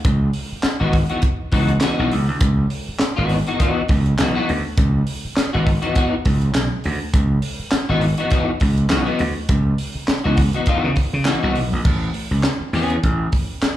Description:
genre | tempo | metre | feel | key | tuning
funk | 102 BPM | 4/4 | swing 56% on 16ths | C# minor | A4 = 440 Hz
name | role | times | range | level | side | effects
tight funk drum kit | drums | 0.0-13.8 s | crash cymbal, handclaps, hi-hat, kick drum, snare drum | -21 LUFS | equal | none
gritty slap bass | bass | 0.1-13.7 s | G#1 to C#3 | -19 LUFS | equal | overdrive
electric guitar at the edge of break-up | accompaniment | 0.8-13.0 s | E3 to G#4 | -23 LUFS | left 2 dB | ensemble chorus, slapback echo
room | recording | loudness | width
small room ambience | live gig heard through the venue's PA, club reverb | -17 LUFS | side -13 dB against mid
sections
0.0-11.9 A section; 11.9-13.8 B section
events
none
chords
0.0 C#m11; 11.9 Amaj9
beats
| 0.05 0.64 1.23 1.82 | 2.42 3.00 3.60 4.19 | 4.78 5.37 5.96 6.55 | 7.14 7.73 8.32 8.91 | 9.50 10.09 10.68 11.27 | 11.86 12.44 13.03 13.62

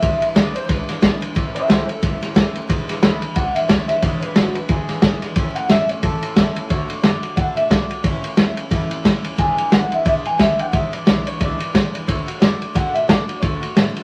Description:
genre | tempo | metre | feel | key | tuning
rockabilly | 179 BPM | 4/4 | swing 59% on 8ths | unclear | A4 = 439 Hz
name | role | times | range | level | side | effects
electric guitar through a small old amp | melody | 0.0-14.0 s | F#4 to B5 | -25 LUFS | equal | none
picked steel-string acoustic guitar | accompaniment | 0.0-14.0 s | E2 to F#4 | -31 LUFS | equal | none
upright bass | bass | 0.0-14.0 s | E1 to B2 | -35 LUFS | equal | none
vintage drum kit | drums | 0.0-14.0 s | kick drum, ride cymbal, snare drum | -20 LUFS | equal | none
room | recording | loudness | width
moderate studio reverb, RT60 0.6 s | vinyl crackle, lossy compression artefacts | -18 LUFS | mono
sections
0.0-6.7 A section; 6.7-14.0 B section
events
clean electric guitar solo 0.0-6.7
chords
0.0 E7; 1.4 A; 2.7 E7; 5.4 A; 6.7 D; 8.0 A; 9.4 E7; 12.1 D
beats
| 0.02 0.35 0.69 1.02 | 1.36 1.69 2.02 2.36 | 2.69 3.03 3.36 3.69 | 4.03 4.36 4.70 5.03 | 5.36 5.70 6.03 6.37 | 6.70 7.03 7.37 7.70 | 8.04 8.37 8.71 9.04 | 9.38 9.72 10.05 10.39 | 10.73 11.06 11.40 11.74 | 12.08 12.41 12.75 13.09 | 13.43 13.76

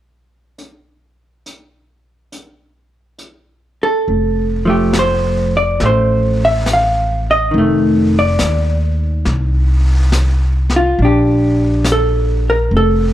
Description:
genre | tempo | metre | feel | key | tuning
jazz ballad | 69 BPM | 4/4 | swing 68% on 8ths | F major | A4 = 440 Hz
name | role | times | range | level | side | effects
vintage brush drum kit | drums | 0.6-13.1 s | brushed snare drum, hi-hat, snare drum | -24 LUFS | left 1 dB | none
vintage hollow-body jazz guitar | accompaniment | 3.8-13.1 s | Eb3 to F5 | -15 LUFS | equal | none
upright bass | bass | 4.1-13.1 s | F1 to Eb2 | -15 LUFS | equal | none
room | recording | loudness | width
light reverb | dark, warm production, faint mains hum | -12 LUFS | side -13 dB against mid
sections
0.6-4.1 A section; 4.1-13.1 B section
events
none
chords
0.6 N.C.; 4.1 F; 7.5 F6; 11.0 Bb6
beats
| 0.59 1.46 2.32 3.19 | 4.06 4.93 5.80 6.67 | 7.53 8.40 9.26 10.13 | 10.99 11.85 12.72

